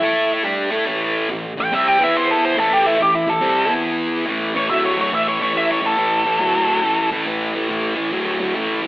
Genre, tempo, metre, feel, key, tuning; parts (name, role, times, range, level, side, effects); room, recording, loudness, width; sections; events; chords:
rock; 141 BPM; 4/4; swing 66% on 8ths; A4 = 441 Hz
octave-fuzz lead guitar; melody; 0.0-7.1 s; E4 to G5; -17 LUFS; equal; distortion
thick fuzz guitar; riff; 0.0-8.9 s; A2 to A4; -19 LUFS; equal; distortion
wet stone room reverb, RT60 1.4 s; band playing live in one room, telephone sound; -16 LUFS; side -19 dB against mid
0.0-4.3 A section; 4.3-8.9 B section
lead electric guitar solo 4.3-8.9
0.0 A5; 1.9 E5; 2.6 A5; 3.6 E5; 4.3 A5